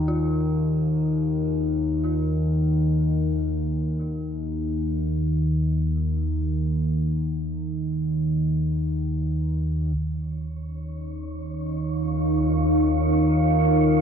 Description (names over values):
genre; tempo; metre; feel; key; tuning
dark ambient drone; free time; none; none; unclear; A4 = 440 Hz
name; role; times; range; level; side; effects
dark detuned synth bell; arpeggios; 0.0-10.0 s; Db4 to F4; -39 LUFS; right 1 dB; chorus, analog delay, shimmer reverb
analog drone; drone; 0.0-14.0 s; Eb2 to Eb3; -22 LUFS; equal; chorus
deep dark ambient pad; sustained chords; 11.1-14.0 s; Eb4 to F5; -22 LUFS; equal; chorus, built-in reverb, shimmer reverb
wind-like tuned noise texture; texture; 10.8-14.0 s; Db4 to Db5; -35 LUFS; right 2 dB; built-in reverb, shimmer reverb
room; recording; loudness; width
moderate plate reverb, RT60 2.5 s; echo-heavy mix; -22 LUFS; side -7 dB against mid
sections
0.0-10.0 A section; 10.0-14.0 B section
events
fade-out on synth bell 0.0-10.0; filter sweep on synth drone 10.0-14.0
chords
0.0 Ebsus2